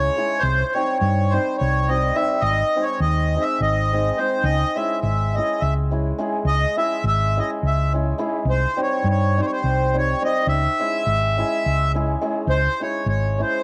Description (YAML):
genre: balkan folk, Balkan wedding band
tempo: 209 BPM (eighths)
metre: 7/8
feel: straight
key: C# hungarian minor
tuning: A4 = 439 Hz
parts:
  - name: accordion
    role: melody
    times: 0.0-13.6 s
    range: C5 to E5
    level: -24 LUFS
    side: equal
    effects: cassette tape
  - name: hammered dulcimer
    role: accompaniment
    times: 0.0-13.6 s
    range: G3 to G#4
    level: -28 LUFS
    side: equal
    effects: cassette tape
  - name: hollow-body short-scale fingered electric bass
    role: bass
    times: 0.0-13.4 s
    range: G#1 to G2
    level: -23 LUFS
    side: equal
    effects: tube saturation
room: moderate spring reverb, RT60 1.6 s, small room ambience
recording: home recording on cassette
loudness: -21 LUFS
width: mono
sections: 0.0-12.5 A section; 12.5-13.6 A section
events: none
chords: 0.4 Cm; 2.4 G#; 4.4 C#m; 8.5 Cm; 10.5 C#m